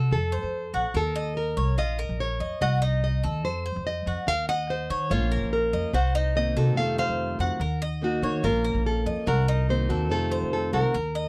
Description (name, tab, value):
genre	latin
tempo	144 BPM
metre	4/4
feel	straight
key	unclear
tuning	A4 = 435 Hz
part	nylon-string guitar	melody	0.0-11.3 s	Gb4 to Gb5	-31 LUFS	equal	none
part	Cuban tres	arpeggios	0.0-11.3 s	Eb4 to Eb5	-34 LUFS	equal	none
part	upright bass	bass	0.0-11.3 s	Bb1 to Eb3	-29 LUFS	equal	none
part	picked acoustic archtop guitar	accompaniment	5.1-11.0 s	C3 to Gb4	-32 LUFS	equal	none
room	light reverb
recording	dry, close 1970s-style studio recording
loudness	-26 LUFS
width	mono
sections	0.0-11.3 A section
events	none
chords	0.1 F; 0.9 Eb5; 1.8 Bbm; 2.6 Cdim; 3.4 F7; 4.3 Eb5; 5.1 Bbm; 5.9 Cm7b5; 6.8 F7; 7.6 Ebm; 8.4 Bbm; 9.3 Cm7b5; 10.1 F7